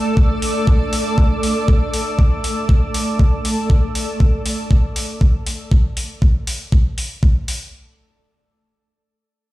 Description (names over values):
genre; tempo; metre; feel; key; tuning
acid house; 119 BPM; 4/4; straight; unclear; A4 = 440 Hz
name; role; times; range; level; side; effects
dark analog pad; sustained chords; 0.0-3.7 s; none; barely audible; none; none
granular cloud pad; texture; 0.0-3.7 s; A3 to E6; -22 LUFS; right 1 dB; built-in reverb, sidechain pumping
electronic kick drum; drums; 0.2-7.3 s; none; -14 LUFS; equal; overdrive, small room ambience
electronic hi-hat; drums; 0.4-7.6 s; none; -26 LUFS; equal; small room ambience
room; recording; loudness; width
light reverb; played on a big sound system in a bare room, stone room reverb; -15 LUFS; side -17 dB against mid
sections
0.0-7.7 A section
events
none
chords
0.0 A5